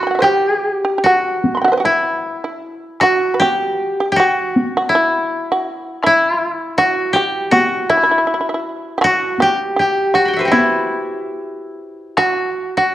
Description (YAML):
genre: japanese traditional, Japanese chamber music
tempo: 79 BPM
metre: 4/4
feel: uneven beats, rubato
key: E hirajoshi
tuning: A4 = 441 Hz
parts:
  - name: koto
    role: melody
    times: 0.0-12.9 s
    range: E4 to B5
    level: -16 LUFS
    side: left 1 dB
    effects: none
  - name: shamisen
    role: second line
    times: 0.0-12.9 s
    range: E4 to C6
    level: -18 LUFS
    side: right 2 dB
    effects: none
  - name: taiko ensemble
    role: percussion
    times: 1.4-12.4 s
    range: none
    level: -21 LUFS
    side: left 1 dB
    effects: none
room: moderate scoring stage reverb, RT60 1.6 s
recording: worn, warbling old tape, cassette tape, warbly pitch drift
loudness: -14 LUFS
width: side -13 dB against mid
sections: 0.0-12.9 A section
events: none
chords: none